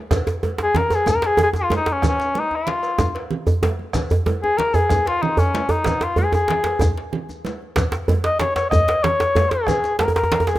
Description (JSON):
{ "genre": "west african traditional, West African drum ensemble", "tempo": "126 BPM (dotted quarters)", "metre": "12/8", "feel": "straight", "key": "Db major pentatonic", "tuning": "A4 = 440 Hz", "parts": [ { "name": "bombo", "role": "percussion", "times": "0.1-10.6 s", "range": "none", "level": "-29 LUFS", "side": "right 2 dB", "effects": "none" }, { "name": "congas", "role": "percussion", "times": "0.1-10.6 s", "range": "none", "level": "-28 LUFS", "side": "right 5 dB", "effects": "none" }, { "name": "cowbell", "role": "percussion", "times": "0.1-10.6 s", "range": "none", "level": "-32 LUFS", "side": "right 1 dB", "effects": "none" }, { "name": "djembe", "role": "percussion", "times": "0.1-10.5 s", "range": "none", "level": "-28 LUFS", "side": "left 2 dB", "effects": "none" }, { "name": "djembe", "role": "percussion", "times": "0.1-10.6 s", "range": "none", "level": "-20 LUFS", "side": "right 1 dB", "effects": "none" }, { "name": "shekere", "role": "percussion", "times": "0.1-10.6 s", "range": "none", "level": "-32 LUFS", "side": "equal", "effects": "none" }, { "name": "mellow cor anglais", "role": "melody", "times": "0.6-10.6 s", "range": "Db4 to Eb5", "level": "-19 LUFS", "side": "left 2 dB", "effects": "none" } ], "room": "light reverb, studio reverb", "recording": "rough home demo mix", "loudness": "-17 LUFS", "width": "side -15 dB against mid", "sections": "0.1-10.6 A section", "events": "none", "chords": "none", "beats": "| 0.11 0.59 1.07 1.55 | 2.03 2.51 2.98 3.46 | 3.94 4.42 4.90 5.38 | 5.85 6.33 6.81 7.29 | 7.76 8.24 8.72 9.20 | 9.68 10.15" }